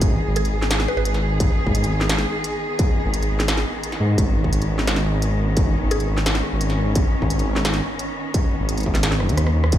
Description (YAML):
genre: half-time drum and bass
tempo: 173 BPM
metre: 4/4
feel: half-time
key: G# minor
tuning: A4 = 440 Hz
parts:
  - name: clear studio cello section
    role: sustained chords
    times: 0.0-9.8 s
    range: D#3 to G#4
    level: -26 LUFS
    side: left 1 dB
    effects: sidechain pumping
  - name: dark detuned saw bass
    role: bass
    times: 0.0-9.8 s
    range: F#1 to G#2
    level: -20 LUFS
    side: equal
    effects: none
  - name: electronic kick drum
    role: drums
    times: 0.0-9.8 s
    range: none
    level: -20 LUFS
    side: equal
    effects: distortion
  - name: industrial drum kit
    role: drums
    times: 0.0-9.8 s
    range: hi-hat, rim click, snare drum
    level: -25 LUFS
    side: equal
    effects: none
  - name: mallet-like synth pluck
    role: melody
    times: 0.4-1.0, 5.9-6.4 s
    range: G#4 to B4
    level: -30 LUFS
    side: equal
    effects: chorus, digital delay
room: light reverb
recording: played on a big sound system in a bare room, large studio reverb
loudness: -18 LUFS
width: side -12 dB against mid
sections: 0.0-9.8 A section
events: drum fill 9.2-9.7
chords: 0.0 G#m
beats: | 0.02 0.36 0.71 1.06 | 1.41 1.75 2.10 2.45 | 2.79 3.14 3.49 3.83 | 4.18 4.53 4.87 5.22 | 5.57 5.91 6.26 6.61 | 6.95 7.30 7.65 8.00 | 8.34 8.69 9.04 9.38 | 9.73